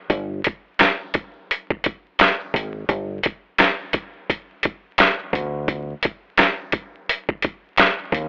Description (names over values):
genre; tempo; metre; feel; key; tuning
hip hop, boom-bap hip-hop; 86 BPM; 4/4; swing 57% on 16ths; unclear; A4 = 440 Hz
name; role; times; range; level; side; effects
deep dub fingered electric bass; bass; 0.1-8.3 s; G1 to Eb2; -29 LUFS; equal; none
dusty soul sampler-style drum kit; drums; 0.1-8.3 s; handclaps, hi-hat, kick drum, snare drum; -20 LUFS; equal; none
room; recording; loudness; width
little or no reverb; dry, gritty hardware recording, transformer saturation, vinyl crackle, telephone sound; -22 LUFS; mono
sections
0.0-8.3 A section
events
none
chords
none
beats
| 0.10 0.80 1.50 2.19 | 2.89 3.59 4.29 4.99 | 5.68 6.38 7.08 7.78